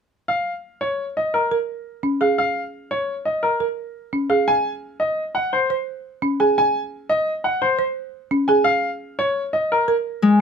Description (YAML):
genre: classical, minimalist pattern music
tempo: 172 BPM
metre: 6/4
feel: straight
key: Bb minor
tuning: A4 = 440 Hz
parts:
  - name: clear grand piano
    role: melody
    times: 0.3-9.9 s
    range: Bb4 to Ab5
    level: -20 LUFS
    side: left 1 dB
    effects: none
  - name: folk marimba with medium hard mallets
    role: arpeggios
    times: 1.5-10.1 s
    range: Db4 to C5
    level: -21 LUFS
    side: right 3 dB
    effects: none
  - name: Celtic harp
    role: accompaniment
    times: 10.2-10.4 s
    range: Ab3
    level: -12 LUFS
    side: left 3 dB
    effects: none
room: little or no reverb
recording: close, detailed microphones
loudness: -19 LUFS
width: side -6 dB against mid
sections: 0.3-10.4 A section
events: none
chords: 0.3 Bbm7; 4.5 Absus4; 8.7 N.C.